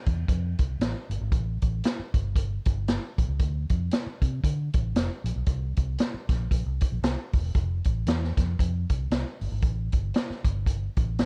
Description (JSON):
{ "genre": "uptempo 1960s-style soul", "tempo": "116 BPM", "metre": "4/4", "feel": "swing 58% on 8ths", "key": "F major", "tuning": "A4 = 440 Hz", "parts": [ { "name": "vintage muted fingered electric bass", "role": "bass", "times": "0.1-11.3 s", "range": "E1 to D3", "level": "-31 LUFS", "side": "equal", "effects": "none" }, { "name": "vintage drum kit", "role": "drums", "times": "0.1-11.3 s", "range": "hi-hat, kick drum, snare drum", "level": "-28 LUFS", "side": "equal", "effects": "none" } ], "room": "little or no reverb", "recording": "cassette tape", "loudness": "-27 LUFS", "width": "mono", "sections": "0.0-11.3 A section", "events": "none", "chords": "none" }